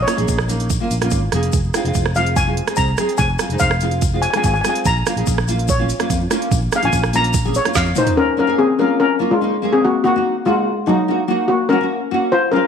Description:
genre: calypso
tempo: 145 BPM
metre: 4/4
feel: straight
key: Bb minor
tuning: A4 = 439 Hz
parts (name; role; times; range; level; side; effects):
- steel pan; melody; 0.0-12.7 s; Gb3 to Bb5; -17 LUFS; left 3 dB; none
- fingered electric bass; bass; 0.0-7.9 s; F1 to F2; -20 LUFS; equal; none
- nylon-string guitar; accompaniment; 0.1-12.7 s; Ab3 to Ab4; -22 LUFS; right 1 dB; double-tracked left and right
- deep house drum kit; drums; 0.1-8.2 s; hi-hat, kick drum, rim click, snare drum, toms; -21 LUFS; right 4 dB; none
- tube shaker; percussion; 0.1-8.1 s; none; -30 LUFS; left 13 dB; none
room: moderate echo chamber reverb, RT60 1.3 s, small room reverb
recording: 1960s-style stereo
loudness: -15 LUFS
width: side -7 dB against mid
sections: 0.0-8.2 A section; 8.2-12.7 B section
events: steel pan solo 0.0-8.2; drum fill 7.8-8.2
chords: 0.0 Bbm; 1.5 Fm; 4.9 Bbm; 9.8 Ebm; 11.5 Gb

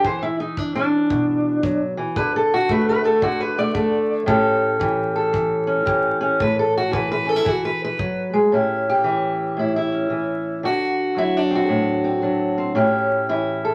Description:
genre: acoustic country blues, solo or duo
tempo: 113 BPM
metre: 4/4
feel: swing 65% on 8ths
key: A mixolydian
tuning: A4 = 441 Hz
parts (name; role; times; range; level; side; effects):
- fingerpicked steel-string acoustic guitar; melody; 0.0-13.7 s; A2 to D5; -20 LUFS; equal; none
- kick drum; drums; 0.0-8.2 s; none; -33 LUFS; equal; none
room: wet studio reverb, RT60 0.6 s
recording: vinyl crackle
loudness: -20 LUFS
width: mono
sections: 0.0-8.5 A section; 8.5-13.7 B section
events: steel-string acoustic guitar solo 0.0-8.5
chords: 0.0 E5; 2.2 D5; 4.3 A7; 7.5 E5; 8.5 A7; 10.6 D7; 12.8 A7

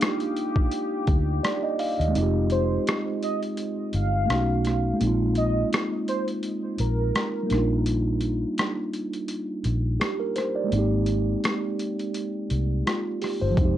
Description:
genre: lo-fi hip hop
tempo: 84 BPM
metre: 4/4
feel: swing 55% on 16ths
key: unclear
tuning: A4 = 440 Hz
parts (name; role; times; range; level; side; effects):
- mellow tine electric piano; accompaniment; 0.0-13.8 s; F3 to F5; -26 LUFS; right 1 dB; slow stereo tremolo, cassette tape, low-pass filter
- deep dark ambient pad; sustained chords; 0.0-2.1, 13.6-13.8 s; G4 to D6; -35 LUFS; left 4 dB; chorus, built-in reverb, low-pass filter, plate reverb
- boom bap sampler-style drum kit; drums; 0.0-13.8 s; hi-hat, kick drum, rim click; -27 LUFS; left 1 dB; overdrive
- vintage muted fingered electric bass; bass; 1.1-13.8 s; F1 to Eb2; -25 LUFS; equal; none
- warm velvety synth lead; melody; 2.5-7.8 s; Bb4 to F5; -30 LUFS; right 1 dB; chorus, low-pass filter, analog delay, plate reverb
room: light reverb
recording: cassette tape, nothing above 10.9 kHz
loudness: -23 LUFS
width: side -12 dB against mid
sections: 0.0-2.1 A section; 2.1-13.8 B section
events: kick muted 2.1-13.6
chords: 0.0 Ebmaj9; 2.1 Fm9; 4.3 B9; 5.0 Bb9sus4; 7.5 Ebmaj9/Bb; 10.7 Abmaj7

